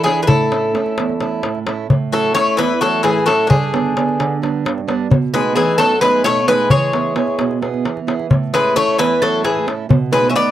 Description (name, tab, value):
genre	greek folk, Greek bouzouki band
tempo	262 BPM (eighths)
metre	7/8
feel	straight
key	A major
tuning	A4 = 440 Hz
part	Greek bouzouki	melody	0.0-10.5 s	G#4 to E5	-16 LUFS	left 1 dB	none
part	Greek bouzouki	second line	0.0-10.5 s	D3 to G#4	-21 LUFS	left 6 dB	none
part	fingerpicked acoustic archtop guitar	accompaniment	0.0-10.5 s	E2 to G#4	-20 LUFS	right 7 dB	none
part	darbuka	percussion	0.1-10.5 s	none	-18 LUFS	left 1 dB	none
room	light reverb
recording	dry, close 1970s-style studio recording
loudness	-14 LUFS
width	side -12 dB against mid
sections	0.0-1.9 A section; 1.9-10.5 A section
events	none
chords	0.3 A; 3.5 G; 5.1 B7; 6.7 E; 8.3 A; 9.9 B7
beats	0.06 | 0.29 0.52 0.75 0.98 1.21 1.44 1.67 | 1.90 2.13 2.36 2.59 2.82 3.05 3.28 | 3.51 3.73 3.96 4.19 4.42 4.65 4.88 | 5.11 5.34 5.57 5.79 6.02 6.25 6.48 | 6.71 6.93 7.16 7.39 7.62 7.85 8.07 | 8.30 8.53 8.76 8.98 9.21 9.44 9.66 | 9.89 10.12 10.34